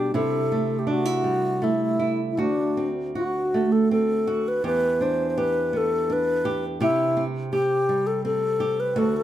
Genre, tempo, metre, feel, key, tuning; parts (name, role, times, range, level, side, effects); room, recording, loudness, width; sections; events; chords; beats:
celtic folk, Celtic slow air; 82 BPM; 3/4; rubato; A4 = 441 Hz
reedy wooden-headed alto flute; melody; 0.0-9.2 s; D4 to C5; -23 LUFS; left 1 dB
flamenco guitar; accompaniment; 0.0-9.2 s; D2 to G4; -25 LUFS; right 2 dB
moderate recital hall reverb, RT60 1.7 s; close, detailed microphones; -21 LUFS; side -12 dB against mid
0.0-9.2 A section
0.1 C6; 2.4 D7; 4.6 Em7; 6.8 C5
| 0.13 0.87 1.62 | 2.39 3.16 3.91 | 4.65 5.38 6.10 | 6.81 7.52 8.24 | 8.96